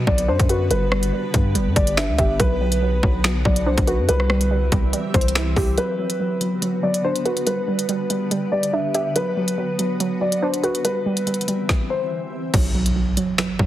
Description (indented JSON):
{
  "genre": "hip hop, drill",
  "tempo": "142 BPM",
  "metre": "4/4",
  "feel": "half-time",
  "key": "B phrygian",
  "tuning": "A4 = 440 Hz",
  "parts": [
    { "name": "warbly dusty pluck", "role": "accompaniment", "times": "0.0-13.7 s", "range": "F#3 to G4", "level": "-24 LUFS", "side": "right 2 dB", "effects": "chorus, low-pass filter" },
    { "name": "granular cloud pad", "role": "sustained chords", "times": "0.0-11.7 s", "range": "D3 to E5", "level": "-30 LUFS", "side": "left 2 dB", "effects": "built-in reverb" },
    { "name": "distorted 808-style bass", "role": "bass", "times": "0.0-5.8, 12.5-13.7 s", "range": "F#1 to G2", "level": "-22 LUFS", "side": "equal", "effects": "distortion" },
    { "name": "dark concert grand piano", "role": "melody", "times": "0.1-12.5 s", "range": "B4 to E5", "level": "-24 LUFS", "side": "left 1 dB", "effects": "digital delay" },
    { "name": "drill drum kit", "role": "drums", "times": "0.1-13.7 s", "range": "crash cymbal, finger snaps, hi-hat, kick drum, rim click, snare drum", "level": "-21 LUFS", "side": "equal", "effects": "none" },
    { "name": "impact", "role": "sound effects", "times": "12.6-13.7 s", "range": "none", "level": "-28 LUFS", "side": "equal", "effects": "none" }
  ],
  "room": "light reverb",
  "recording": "heavily compressed radio sound",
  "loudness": "-18 LUFS",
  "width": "side -13 dB against mid",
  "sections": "0.0-5.8 A section; 5.8-12.5 B section; 12.5-13.7 C section",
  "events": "impact 12.5-13.7; filter sweep on synth pluck 12.5-13.7",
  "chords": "0.0 Bm; 0.7 G; 2.4 Bm; 4.1 C; 5.8 Bm; 7.5 G; 9.2 Bm; 10.8 C; 12.5 B5",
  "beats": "0.28 | 0.71 1.13 1.55 1.97 | 2.40 2.82 3.24 3.66 | 4.09 4.51 4.93 5.35 | 5.78 6.20 6.62 7.04 | 7.47 7.89 8.31 8.73 | 9.16 9.58 10.00 10.42 | 10.85 11.27 11.69 12.11 | 12.54 12.96 13.38"
}